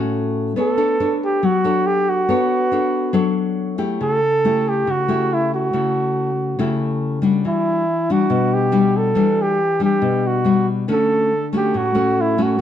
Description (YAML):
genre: bossa nova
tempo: 140 BPM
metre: 4/4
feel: straight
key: D major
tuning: A4 = 442 Hz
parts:
  - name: nylon-string guitar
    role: accompaniment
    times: 0.0-12.6 s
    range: A2 to C#5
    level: -19 LUFS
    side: left 3 dB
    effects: none
  - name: mellow flugelhorn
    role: melody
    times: 0.6-12.6 s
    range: E4 to A4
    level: -18 LUFS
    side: right 2 dB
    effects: plate reverb
room: moderate studio reverb, RT60 0.9 s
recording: dark, warm production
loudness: -16 LUFS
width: side -10 dB against mid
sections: 0.0-12.6 A section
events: none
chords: 0.0 Dmaj7 (rootless); 0.6 Bm9; 4.0 A7/C#; 7.4 Em9; 10.9 Dmaj7